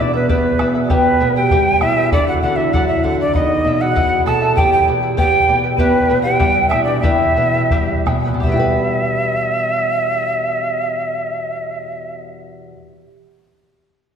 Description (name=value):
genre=andean folk, Andean ensemble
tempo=79-99 BPM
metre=2/4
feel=straight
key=E minor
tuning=A4 = 440 Hz
part: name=mellow hollow quena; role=melody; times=0.0-12.2 s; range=B4 to A5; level=-17 LUFS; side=right 1 dB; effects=none
part: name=vibraphone with medium hard mallets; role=second line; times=0.0-12.9 s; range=B3 to A4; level=-22 LUFS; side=right 2 dB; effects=none
part: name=charango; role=accompaniment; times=0.0-13.0 s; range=E4 to G5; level=-22 LUFS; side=left 2 dB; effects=none
part: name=nylon-string guitar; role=accompaniment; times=0.0-13.0 s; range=E2 to B4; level=-22 LUFS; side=equal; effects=none
part: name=bombo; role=percussion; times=0.3-8.8 s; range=none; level=-21 LUFS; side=left 1 dB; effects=none
room=wet scoring stage reverb, RT60 1.8 s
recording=recorded in a church or concert hall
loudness=-14 LUFS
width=side -7 dB against mid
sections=0.0-8.4 A section; 8.4-11.5 B section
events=slowing down 5.8-8.4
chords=0.0 G/E; 0.9 Em; 2.1 D/E; 3.3 B/E; 4.6 G/E; 5.8 Em